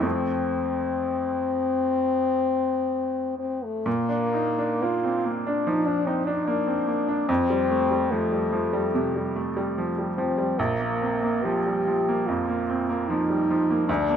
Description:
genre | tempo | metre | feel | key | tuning
classical, romantic duo for French horn and grand piano | 60-76 BPM | 4/4 | rubato | Bb major | A4 = 440 Hz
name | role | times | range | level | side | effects
warm French horn | melody | 0.0-14.2 s | A3 to G4 | -25 LUFS | left 2 dB | none
bright baby grand piano | accompaniment | 0.0-14.2 s | Bb1 to Eb4 | -26 LUFS | right 2 dB | none
room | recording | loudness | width
light reverb | close, detailed microphones | -22 LUFS | side -8 dB against mid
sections
0.0-3.9 A section; 3.9-14.2 B section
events
none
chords
0.0 F; 3.9 Bb; 7.3 Fadd9; 10.6 Bb5

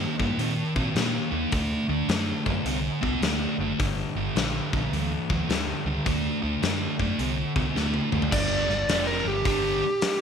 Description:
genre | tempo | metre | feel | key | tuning
blues rock power trio and southern rock | 106 BPM | 4/4 | swing 65% on 8ths | G minor | A4 = 442 Hz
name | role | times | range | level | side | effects
thick fuzz guitar | riff | 0.0-9.8 s | F2 to C4 | -27 LUFS | right 1 dB | distortion
vintage muted fingered electric bass | bass | 0.0-9.8 s | F1 to Bb2 | -31 LUFS | right 1 dB | none
big rock drum kit | drums | 0.2-10.2 s | crash cymbal, hi-hat, kick drum, snare drum, toms | -29 LUFS | left 3 dB | none
overdriven slide guitar | melody | 8.3-10.2 s | G4 to D5 | -26 LUFS | right 1 dB | none
room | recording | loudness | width
light reverb, studio reverb | 1960s-style stereo | -23 LUFS | side -7 dB against mid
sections
0.0-8.3 A section; 8.3-10.2 B section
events
drum fill 7.8-8.3; electric slide guitar solo 8.3-10.2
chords
0.0 Eb5; 1.5 D7; 3.8 Gm; 6.1 D7; 8.3 G5

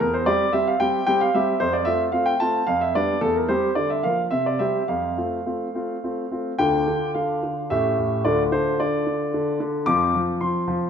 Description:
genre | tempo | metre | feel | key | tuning
classical-period piano sonatina | 111 BPM | 3/4 | rubato | F major, D minor from 6.6 s | A4 = 441 Hz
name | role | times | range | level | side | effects
warm baby grand piano | solo | 0.0-10.9 s | D2 to D6 | -20 LUFS | equal | none
room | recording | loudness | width
moderate recital hall reverb, RT60 1.8 s | minimal, uncompressed stereo recording | -20 LUFS | side -7 dB against mid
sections
0.0-6.6 A section; 6.6-10.9 B section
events
none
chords
0.0 C/E; 1.6 F; 2.7 G7/F; 3.2 C/E; 3.7 Bb/D; 4.3 C; 4.9 F; 6.6 Dm; 7.7 A7; 8.2 Dm; 9.9 F5

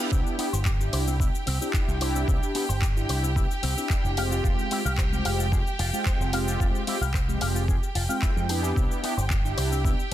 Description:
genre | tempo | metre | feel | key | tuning
nu-disco, nu disco | 111 BPM | 4/4 | straight | C major | A4 = 440 Hz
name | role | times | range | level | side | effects
mellow synth brass | accompaniment | 0.0-9.9 s | F3 to G5 | -30 LUFS | equal | chorus, sidechain pumping, tape echo
clear studio violin section | sustained chords | 0.0-10.1 s | G4 to G5 | -35 LUFS | right 2 dB | sidechain pumping
electric guitar with an envelope filter | riff | 0.0-9.9 s | B3 to F5 | -36 LUFS | left 3 dB | analog chorus, vintage 12-bit sampler grit, tape echo
picked electric bass with an envelope filter | bass | 0.1-10.1 s | F1 to F2 | -27 LUFS | equal | none
electronic kick drum | drums | 0.1-10.0 s | none | -25 LUFS | equal | overdrive, small room ambience
house drum kit | drums | 0.1-10.1 s | handclaps, hi-hat, shaker | -33 LUFS | left 2 dB | small room ambience
room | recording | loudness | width
digital ambience | dense, heavily limited modern master | -23 LUFS | side -13 dB against mid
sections
0.0-10.1 A section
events
none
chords
0.1 Cmaj7; 4.2 Fmadd9; 8.8 Cmaj7

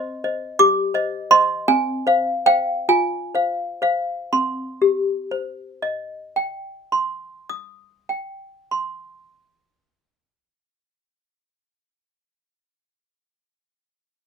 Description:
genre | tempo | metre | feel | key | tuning
classical, lullaby for toy piano | 39-58 BPM (dotted quarters) | 6/8 | straight | C minor | A4 = 440 Hz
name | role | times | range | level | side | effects
toy piano | solo | 0.0-11.9 s | C4 to Eb6 | -18 LUFS | equal | none
room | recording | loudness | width
light reverb | close, detailed microphones | -19 LUFS | side -6 dB against mid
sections
0.0-4.3 A section; 4.3-10.4 B section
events
slowing down 0.0-4.3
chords
0.0 Cm; 1.7 Fm/C; 4.3 Cm

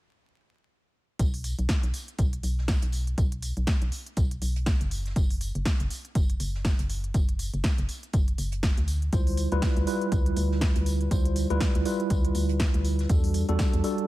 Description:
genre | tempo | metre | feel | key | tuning
deep house | 121 BPM | 4/4 | swing 58% on 16ths | B minor | A4 = 439 Hz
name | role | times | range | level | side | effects
organ-like FM bass | bass | 1.2-13.8 s | F#1 to E2 | -28 LUFS | equal | sidechain pumping
deep house drum kit | drums | 1.2-14.1 s | hi-hat, snare drum | -35 LUFS | equal | none
electronic kick drum | drums | 1.2-13.7 s | none | -26 LUFS | equal | none
soft-mallet drum kit | drums | 1.2-14.0 s | hi-hat, snare drum, tambourine | -45 LUFS | right 1 dB | sidechain pumping on hats, high-pass filter on hats, high-pass filter on snare, sidechain pumping on perc, high-pass filter on perc, high-pass filter on room
mellow tine electric piano | stabs | 9.1-14.1 s | G3 to C5 | -28 LUFS | right 1 dB | medium stereo tremolo, sidechain pumping, tape echo
room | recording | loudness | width
small room ambience | vinyl crackle | -24 LUFS | side -16 dB against mid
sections
1.2-14.1 A section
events
none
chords
1.2 B5; 4.9 N.C.; 8.9 Dm11; 13.1 Em11

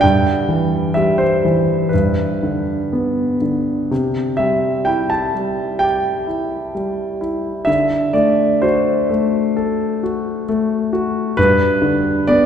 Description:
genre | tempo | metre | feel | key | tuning
classical, lyrical solo piano | 63 BPM | 4/4 | uneven beats, rubato | C major | A4 = 439 Hz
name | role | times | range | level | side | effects
warm concert grand piano | solo | 0.0-12.5 s | G2 to A5 | -15 LUFS | equal | none
room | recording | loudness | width
wet church reverb, RT60 2.9 s | recorded in a church or concert hall | -15 LUFS | side -8 dB against mid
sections
0.0-12.5 A section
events
none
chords
0.0 C/G; 1.9 G; 3.9 C; 7.7 D7; 11.4 G

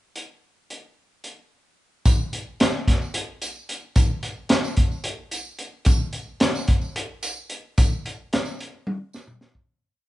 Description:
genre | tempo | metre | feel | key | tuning
rock | 220 BPM (eighths) | 7/8 | straight | none | none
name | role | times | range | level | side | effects
crunchy breakbeat drum kit | drums | 0.2-9.7 s | hi-hat, kick drum, snare drum, toms | -20 LUFS | equal | none
tambourine | percussion | 2.1-9.5 s | none | -36 LUFS | right 3 dB | none
room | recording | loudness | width
moderate large studio reverb, RT60 0.8 s | band playing live in one room, nothing above 10.8 kHz | -22 LUFS | side -16 dB against mid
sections
0.2-2.1 pickup bar; 2.1-9.7 riff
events
fade-out 7.8-9.7; drum fill 8.9-9.7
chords
none

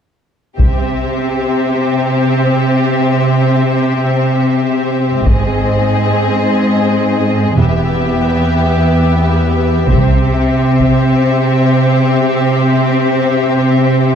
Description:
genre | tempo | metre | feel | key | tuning
cinematic, epic orchestral film score | free time | none | none | C major | A4 = 440 Hz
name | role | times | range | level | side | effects
warm symphonic violin section | melody | 0.6-14.2 s | Eb5 to E5 | -22 LUFS | left 4 dB | none
rich symphonic violin section | second line | 0.6-14.2 s | G4 to Ab4 | -19 LUFS | left 2 dB | none
rich symphonic viola section | accompaniment | 0.6-14.2 s | B3 to C4 | -17 LUFS | left 3 dB | none
rich symphonic cello section | bass | 0.6-14.2 s | E2 to C3 | -14 LUFS | right 2 dB | none
rich symphonic double bass section | bass | 0.6-1.1, 5.3-10.5 s | E1 to C2 | -17 LUFS | right 2 dB | none
taiko ensemble | drums | 0.6-1.7, 5.3-6.4, 9.9-11.1 s | none | -16 LUFS | left 1 dB | none
room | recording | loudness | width
moderate scoring stage reverb, RT60 1.6 s | dark, warm production | -11 LUFS | side -8 dB against mid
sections
0.6-14.2 A section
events
build-up 0.6-14.2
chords
0.6 C; 5.3 Ab; 7.6 Em; 9.9 C

